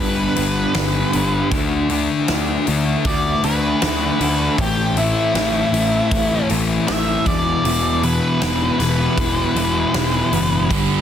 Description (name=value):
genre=quiet-loud alternative rock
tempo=78 BPM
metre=4/4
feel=straight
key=E minor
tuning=A4 = 440 Hz
part: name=octave-fuzz lead guitar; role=melody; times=0.0-11.0 s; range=E4 to E5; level=-22 LUFS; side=right 2 dB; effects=distortion
part: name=electric guitar through a small old amp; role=arpeggios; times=0.0-10.7 s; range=G2 to G4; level=-26 LUFS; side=right 7 dB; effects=tremolo
part: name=thick fuzz guitar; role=riff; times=0.0-11.0 s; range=E2 to D4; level=-20 LUFS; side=left 6 dB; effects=distortion
part: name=fuzz picked electric bass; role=bass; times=0.0-11.0 s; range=E1 to D2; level=-23 LUFS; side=right 1 dB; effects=overdrive
part: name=huge arena drum kit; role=drums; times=0.4-10.9 s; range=hi-hat, kick drum, snare drum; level=-24 LUFS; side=equal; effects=none
part: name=thick fuzz guitar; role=riff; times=10.7-11.0 s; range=G2 to G3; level=-21 LUFS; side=right 13 dB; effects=distortion
room=light reverb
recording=dense, heavily limited modern master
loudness=-16 LUFS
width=side -9 dB against mid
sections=0.0-11.0 A section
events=lead electric guitar solo 0.0-11.0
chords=0.0 G; 1.5 Dsus2; 4.6 Am; 7.3 Em